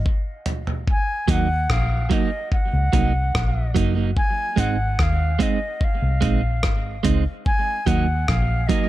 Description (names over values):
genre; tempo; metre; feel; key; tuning
dub reggae; 73 BPM; 4/4; straight; Eb dorian; A4 = 438 Hz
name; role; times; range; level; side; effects
concert flute; melody; 0.0-8.9 s; Eb5 to Ab5; -27 LUFS; equal; dub echo
vintage muted fingered electric bass; bass; 0.0-8.7 s; Gb1 to Eb2; -21 LUFS; left 1 dB; none
dusty soul sampler-style drum kit; drums; 0.1-8.9 s; hi-hat, kick drum, rim click, toms; -23 LUFS; equal; none
clean electric guitar; accompaniment; 1.3-8.9 s; Gb3 to Eb4; -25 LUFS; right 8 dB; harmonic tremolo, dub echo
room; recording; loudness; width
light reverb; none; -19 LUFS; side -15 dB against mid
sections
0.9-8.9 A section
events
break 0.0-0.9; drum fill 0.0-0.9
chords
0.0 N.C.; 0.9 Ebm; 4.2 Ab; 7.5 Ebm